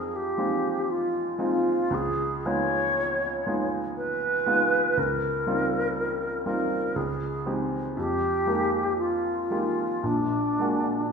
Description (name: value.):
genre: classical, impressionist duo for alto flute and grand piano.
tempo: 59 BPM.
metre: 3/4.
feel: rubato.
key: unclear.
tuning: A4 = 439 Hz.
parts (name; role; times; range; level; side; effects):
alto flute; melody; 0.0-11.1 s; D4 to Db5; -26 LUFS; equal; none.
clear grand piano; accompaniment; 0.0-11.1 s; Bb1 to G4; -28 LUFS; right 2 dB; none.
room: wet recital hall reverb, RT60 1.4 s.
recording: heard from further back in the room.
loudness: -24 LUFS.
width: side -5 dB against mid.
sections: 0.0-11.1 A section.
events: none.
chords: 0.0 Fm7; 1.9 Db9; 5.0 Cm7/Db; 7.0 Abmaj7/Db; 8.0 Fm11; 10.0 Bbaug7.